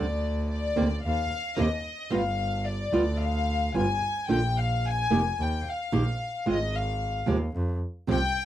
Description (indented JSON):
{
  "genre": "tango",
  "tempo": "111 BPM",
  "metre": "4/4",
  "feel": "rubato",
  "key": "unclear",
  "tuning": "A4 = 442 Hz",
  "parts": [
    { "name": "warm studio violin section", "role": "second line", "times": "0.0-8.4 s", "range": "D5 to Ab5", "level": "-30 LUFS", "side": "left 4 dB", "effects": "none" },
    { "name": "flamenco guitar", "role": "accompaniment", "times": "0.0-8.2 s", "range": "C3 to G4", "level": "-26 LUFS", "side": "right 3 dB", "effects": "none" },
    { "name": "clear double bass", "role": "bass", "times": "0.0-8.3 s", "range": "F1 to F2", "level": "-29 LUFS", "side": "right 1 dB", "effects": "none" }
  ],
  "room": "light reverb",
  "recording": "dry, close 1970s-style studio recording",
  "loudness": "-25 LUFS",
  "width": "side -12 dB against mid",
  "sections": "0.0-8.4 A section",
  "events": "violin section solo 0.0-8.4",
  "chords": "0.0 N.C.; 2.1 G7; 4.3 Bb; 5.4 Eb; 6.5 Ab6; 7.6 Fsus2"
}